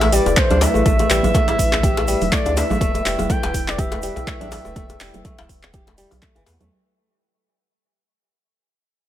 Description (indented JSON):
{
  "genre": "afro house",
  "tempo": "123 BPM",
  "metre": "4/4",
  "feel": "swing 56% on 16ths",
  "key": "unclear",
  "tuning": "A4 = 440 Hz",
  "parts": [
    { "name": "expressive synth lead", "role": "melody", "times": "0.0-6.2 s", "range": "C5 to G5", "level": "-23 LUFS", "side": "right 1 dB", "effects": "chorus, dub echo" },
    { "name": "dark analog pad", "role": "sustained chords", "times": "0.0-6.7 s", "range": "A3 to G5", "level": "-27 LUFS", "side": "left 2 dB", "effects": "chorus, vintage 12-bit sampler grit, sidechain pumping" },
    { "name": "flamenco guitar", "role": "arpeggios", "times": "0.0-6.7 s", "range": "E3 to G4", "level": "-25 LUFS", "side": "equal", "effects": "sidechain pumping, dub echo" },
    { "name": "round analog bass", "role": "bass", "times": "0.0-6.7 s", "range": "E1 to E2", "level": "-24 LUFS", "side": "equal", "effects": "sidechain pumping" },
    { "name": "deep house drum kit", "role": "drums", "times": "0.0-6.7 s", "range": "handclaps, hi-hat", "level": "-24 LUFS", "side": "equal", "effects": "none" },
    { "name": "djembe", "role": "percussion", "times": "0.0-6.7 s", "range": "none", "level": "-27 LUFS", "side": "left 4 dB", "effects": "none" },
    { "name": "egg shaker", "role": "percussion", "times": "0.0-6.7 s", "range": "none", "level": "-35 LUFS", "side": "right 4 dB", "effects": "none" },
    { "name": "electronic kick drum", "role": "drums", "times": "0.4-6.3 s", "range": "none", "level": "-21 LUFS", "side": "equal", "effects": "overdrive" },
    { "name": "congas", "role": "percussion", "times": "0.5-6.7 s", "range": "none", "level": "-29 LUFS", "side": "right 5 dB", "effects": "none" }
  ],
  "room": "small room ambience",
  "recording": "none",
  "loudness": "-16 LUFS",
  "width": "side -12 dB against mid",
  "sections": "0.0-6.7 A section",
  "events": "drop 0.0-6.7; fade-out 0.0-6.7",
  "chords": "0.0 Em7",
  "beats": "0.37 | 0.86 1.35 1.83 2.32 | 2.81 3.30 3.79 4.27 | 4.76 5.25 5.74 6.22"
}